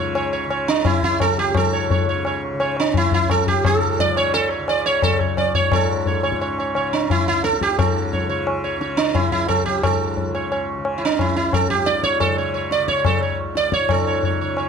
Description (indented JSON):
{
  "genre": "indian classical, Hindustani",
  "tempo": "175 BPM",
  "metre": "3/4",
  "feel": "straight",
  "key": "C# raga todi",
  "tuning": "A4 = 440 Hz",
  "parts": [
    { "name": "sitar", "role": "melody", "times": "0.0-14.7 s", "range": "D4 to D5", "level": "-20 LUFS", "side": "right 4 dB", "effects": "none" },
    { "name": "tanpura", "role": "drone", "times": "0.0-14.7 s", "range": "C#2 to C#3", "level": "-28 LUFS", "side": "left 2 dB", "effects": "none" },
    { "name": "tabla", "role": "percussion", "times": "0.2-14.7 s", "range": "none", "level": "-22 LUFS", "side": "left 4 dB", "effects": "none" }
  ],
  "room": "moderate recital hall reverb, RT60 1.6 s",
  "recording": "close, detailed microphones",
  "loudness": "-17 LUFS",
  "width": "side -6 dB against mid",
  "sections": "0.0-5.7 A section; 5.7-13.9 A section",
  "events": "speeding up 0.0-14.7",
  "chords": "none"
}